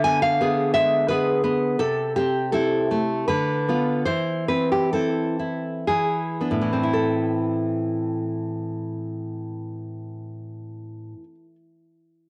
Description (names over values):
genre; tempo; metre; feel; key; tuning
romantic piece for solo classical guitar; 52-89 BPM; 3/4; rubato; A minor; A4 = 439 Hz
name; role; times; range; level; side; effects
nylon-string guitar; solo; 0.0-11.6 s; A2 to Ab5; -24 LUFS; equal; cassette tape
room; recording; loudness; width
moderate spring reverb, RT60 1.7 s, small room ambience; home recording on cassette; -23 LUFS; mono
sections
0.0-7.0 A section; 7.0-12.3 B section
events
slowing down 0.7-7.0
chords
0.0 Ddim7; 1.8 Am/C; 3.3 Bdim/D; 4.1 Am/E; 5.9 E7; 7.0 Am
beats
0.39 1.06 | 1.79 2.51 3.28 | 4.06 4.93 5.87 | 6.95 7.98 9.00 | 10.02 11.04